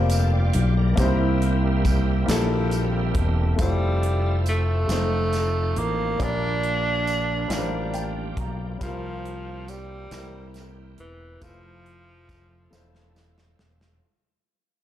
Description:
slow gospel; 46 BPM (dotted quarters); 6/8; straight; F major; A4 = 439 Hz
warm upright piano; accompaniment; 0.0-14.0 s; G2 to Bb5; -29 LUFS; left 4 dB; slapback echo
bright tonewheel organ; sustained chords; 0.0-14.0 s; Eb3 to F5; -34 LUFS; right 4 dB; slow rotary speaker, chorus vibrato
fingered electric bass; bass; 0.0-14.0 s; E1 to C2; -24 LUFS; equal
modern studio drum kit; drums; 0.1-14.0 s; hi-hat, kick drum, snare drum; -29 LUFS; equal
tambourine; percussion; 0.1-13.6 s; -40 LUFS; right 4 dB
clear tenor saxophone; melody; 3.6-13.2 s; E3 to D4; -28 LUFS; right 1 dB; slapback echo
studio reverb; live gig heard through the venue's PA, club reverb; -21 LUFS; side -12 dB against mid
0.0-14.0 A section
fade-out 0.0-14.0; upright piano fill 7.5-8.8; drum fill 12.7-14.0
0.0 Gm7; 1.0 C7; 3.6 Fmaj7; 4.9 F7; 6.2 Bb6; 8.8 C7sus4; 10.1 C7; 11.4 Fmaj7
| 0.98 2.29 | 3.59 4.90 | 6.20 7.51 | 8.81 10.12 | 11.42 12.72

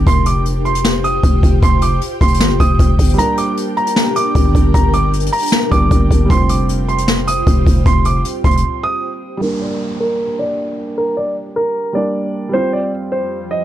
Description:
hip hop, trap; 154 BPM; 4/4; half-time; G minor; A4 = 440 Hz
dark grand piano; melody; 0.0-13.6 s; Bb4 to Eb6; -19 LUFS; right 2 dB; low-pass filter
ethereal airy pad; sustained chords; 0.0-9.4, 13.0-13.6 s; F2 to G5; -24 LUFS; left 1 dB; ensemble chorus, built-in reverb, low-pass filter
growling 808-style bass; bass; 0.0-8.6 s; F1 to Ab1; -16 LUFS; equal
downlifter; sound effects; 0.0-0.1, 9.4-12.5 s; -34 LUFS; equal
jazz brush drum kit; drums; 0.1-8.6 s; hi-hat, kick drum, snare drum; -14 LUFS; equal
felt-muted upright piano; accompaniment; 3.1-13.6 s; G3 to C5; -22 LUFS; right 2 dB; low-pass filter
little or no reverb; dark, warm production; -13 LUFS; side -12 dB against mid
0.0-9.4 A section; 9.4-13.6 B section
break 3.2-4.0, 8.6-9.4; filter sweep 9.4-13.6
0.1 Fsus2; 3.2 Gm; 6.3 Fsus2; 9.4 Gm; 12.5 Fsus2
| 0.07 0.46 0.85 1.24 | 1.62 2.02 2.40 2.79 | 3.18 3.57 3.96 4.35 | 4.74 5.13 5.52 5.91 | 6.30 6.69 7.08 7.47 | 7.86 8.25 8.64 9.03 | 9.42 9.81 10.20 10.59 | 10.98 11.37 11.76 12.14 | 12.53 12.92 13.31

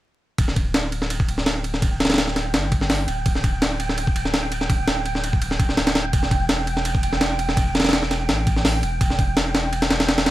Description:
drum and bass, jungle; 167 BPM; 4/4; swing 53% on 16ths; A4 = 440 Hz
soft dub sub bass; bass; 0.4-10.3 s; D1 to A1; -26 LUFS; equal; tube saturation
breakbeat sampler-style drum kit; drums; 0.4-10.3 s; hi-hat, kick drum, ride cymbal, snare drum; -20 LUFS; equal
wind-like tuned noise texture; texture; 1.2-10.3 s; G5; -29 LUFS; right 3 dB; built-in reverb
light reverb; vinyl crackle; -19 LUFS; side -15 dB against mid
0.4-10.3 A section
0.4 Dsus4; 6.1 Em
| 0.38 0.74 1.10 1.46 | 1.82 2.18 2.54 2.90 | 3.26 3.62 3.98 4.34 | 4.70 5.05 5.41 5.77 | 6.13 6.49 6.85 7.21 | 7.57 7.93 8.29 8.65 | 9.01 9.37 9.73 10.09

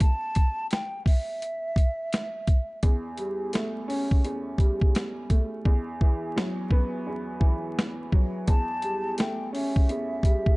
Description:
hip hop, boom-bap hip-hop; 85 BPM; 4/4; swing 62% on 16ths; A4 = 440 Hz
mellow hollow concert flute; melody; 0.0-2.8, 8.5-10.6 s; E5 to A5; -31 LUFS; equal; high-pass filter, low-pass filter, slapback echo
warm upright piano; accompaniment; 0.0-10.6 s; E2 to C#4; -30 LUFS; equal; cassette tape, high-pass filter, low-pass filter
boom bap sampler-style drum kit; drums; 0.0-10.6 s; hi-hat, kick drum, snare drum; -22 LUFS; equal
small room ambience; dark, warm production, vinyl crackle, nothing above 10.8 kHz; -24 LUFS; side -24 dB against mid
0.0-10.6 A section
break 0.0-2.8; hi-hats muted 5.7-8.5
0.0 N.C.; 2.8 A7/E; 5.7 Esus2; 8.5 A7/E
| 0.01 0.71 1.42 2.13 | 2.83 3.54 4.24 4.95 | 5.66 6.36 7.07 7.77 | 8.48 9.19 9.89

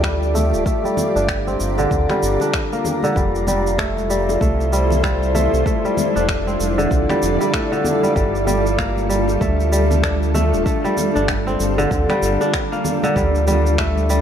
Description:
organic downtempo; 96 BPM; 4/4; swing 59% on 16ths; G dorian; A4 = 439 Hz
granular cloud pad; sustained chords; 0.0-14.2 s; G3 to Bb5; -22 LUFS; equal; built-in reverb, vintage 12-bit sampler grit, sidechain pumping
kora; arpeggios; 0.0-14.2 s; D3 to D4; -20 LUFS; equal; low-pass filter, ping-pong delay
round analog bass; bass; 0.0-14.2 s; D1 to D2; -20 LUFS; equal
electronic finger snaps and shaker; drums; 0.0-14.2 s; -27 LUFS; equal
electronic kick drum; drums; 0.0-13.9 s; -23 LUFS; equal
bongos and congas; percussion; 0.3-14.1 s; -29 LUFS; left 3 dB
moderate echo chamber reverb, RT60 1.5 s, digital ambience; -16 LUFS; side -9 dB against mid
0.0-14.2 A section
filter sweep on kora 0.0-14.2
0.0 Gm9; 3.2 Fmaj9; 8.2 Gm9; 13.2 Dm11
0.04 | 0.66 1.29 1.91 2.54 | 3.16 3.79 4.41 5.04 | 5.66 6.29 6.91 7.54 | 8.16 8.79 9.41 10.04 | 10.66 11.29 11.91 12.54 | 13.16 13.79

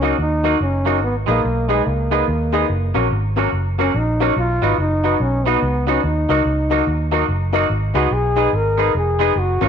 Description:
ska; 144 BPM; 4/4; swing 61% on 8ths; A4 = 436 Hz
mellow trombone; melody; 0.0-9.7 s; Ab3 to Bb4; -21 LUFS; equal
twangy electric guitar; accompaniment; 0.0-9.7 s; Gb3 to Ab4; -22 LUFS; right 11 dB; tube saturation
dark upright piano; stabs; 0.0-9.7 s; Db4 to Eb5; -23 LUFS; left 10 dB
vintage muted fingered electric bass; bass; 0.0-9.7 s; F1 to Eb2; -20 LUFS; equal
moderate echo chamber reverb, RT60 1.5 s; 1960s-style stereo with parts hard left and right; -16 LUFS; side -7 dB against mid
0.0-9.7 A section
trombone solo 0.0-9.7
0.0 Ebm; 1.0 Abm; 2.7 Gb; 4.4 B; 6.0 Ebm; 7.7 Abm
0.19 0.61 | 1.02 1.44 1.86 2.28 | 2.70 3.11 3.53 3.95 | 4.37 4.78 5.20 5.62 | 6.04 6.45 6.87 7.29 | 7.70 8.12 8.54 8.95 | 9.37

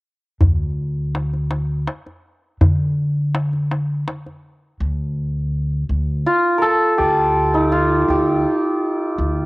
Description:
Persian modal ensemble; 55 BPM (dotted quarters); 6/8; straight; D dastgah shur; A4 = 437 Hz
upright bass; bass; 0.4-9.5 s; D2 to D3; -20 LUFS; equal
tombak; percussion; 0.4-4.4 s; -17 LUFS; equal
santur; melody; 6.3-9.5 s; Eb4+45c to Bb4; -15 LUFS; equal; cassette tape
light reverb; home recording on cassette; -17 LUFS; side -22 dB against mid
0.4-4.8 A section; 4.8-9.5 B section
| 0.42 1.51 | 2.61 3.71 | 4.80 5.90 | 7.00 8.09 | 9.19

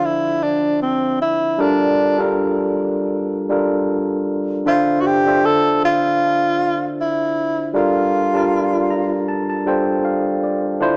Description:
R&B; 78 BPM; 4/4; swing 57% on 16ths; A4 = 440 Hz
breathy tenor saxophone; melody; 0.0-9.2 s; C4 to A4; -17 LUFS; equal
tine electric piano; accompaniment; 0.0-11.0 s; D3 to Bb5; -18 LUFS; equal; fast stereo tremolo
moderate echo chamber reverb, RT60 2.3 s; worn, warbling old tape, cassette tape, warbly pitch drift, small speaker sound; -15 LUFS; side -37 dB against mid
0.0-11.0 A section
tine electric piano fill 8.5-10.8
0.0 Dm9; 1.6 Gm9; 4.7 Dm9; 7.7 Gm9
0.04 0.80 | 1.57 2.34 3.11 3.88 | 4.65 5.42 6.19 6.96 | 7.73 8.50 9.27 10.04 | 10.80

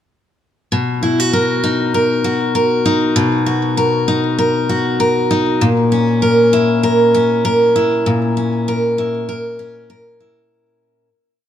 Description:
folktronica; 98 BPM; 4/4; swing 56% on 16ths; B major; A4 = 440 Hz
picked steel-string acoustic guitar; solo; 0.7-11.1 s; A#2 to A#4; -13 LUFS; equal
moderate echo chamber reverb, RT60 2.1 s; dark, warm production; -13 LUFS; side -10 dB against mid
0.7-10.5 groove
fade-out 7.3-10.5
0.7 Bmaj7; 5.6 A#dim
| 0.72 1.33 1.95 2.56 | 3.17 3.78 4.39 5.01 | 5.62 6.23 6.84 7.46 | 8.07 8.68 9.29 9.90

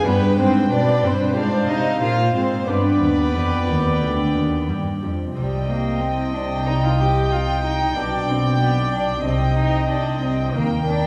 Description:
classical, baroque-style concerto movement with solo episodes; 92 BPM; 4/4; straight; C minor; A4 = 441 Hz
rich cello; melody; 0.0-11.1 s; G3 to G4; -26 LUFS; equal
rich chamber violin section; melody; 0.0-11.1 s; F5 to G5; -34 LUFS; equal
rich chamber violin section; second line; 0.0-11.1 s; B4 to G5; -29 LUFS; equal
lute; accompaniment; 0.0-11.1 s; D2 to F4; -29 LUFS; equal
warm chamber viola section; accompaniment; 0.0-11.1 s; Bb4 to Eb5; -30 LUFS; equal
warm chamber cello section; bass; 0.0-11.1 s; D2 to Eb3; -25 LUFS; equal
warm studio double bass section; bass; 5.4-11.1 s; B1 to Eb2; -28 LUFS; equal
wet recital hall reverb, RT60 1.7 s; heard from further back in the room; -20 LUFS; mono
0.0-5.4 A section; 5.4-11.1 A section
0.1 G; 1.4 Fm/Ab; 2.7 G; 5.4 Cm; 8.0 G/B; 9.3 Cm; 10.6 Eb
| 0.06 0.70 1.35 2.01 | 2.68 3.35 4.02 4.69 | 5.35 6.01 6.66 7.31 | 7.96 8.61 9.26 9.91 | 10.56

